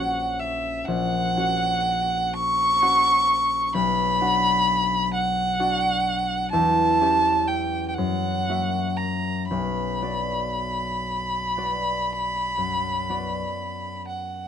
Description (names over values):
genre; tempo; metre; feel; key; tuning
classical, romantic duo for violin and harp; 38-45 BPM (dotted quarters); 12/8; rubato; B minor; A4 = 440 Hz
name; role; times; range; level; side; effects
rich violin; melody; 0.0-14.5 s; E5 to C#6; -22 LUFS; right 1 dB; none
concert harp; accompaniment; 0.0-14.5 s; A#1 to F#5; -27 LUFS; left 3 dB; none
room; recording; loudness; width
light reverb; dark, warm production; -21 LUFS; side -8 dB against mid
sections
0.0-14.5 A section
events
none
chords
0.0 F#/A#; 3.7 Bm; 6.5 C#dim/E; 8.0 F#7; 9.5 Bm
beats
0.86 2.33 | 3.73 5.13 6.52 7.97 | 9.50 11.05 12.57 14.09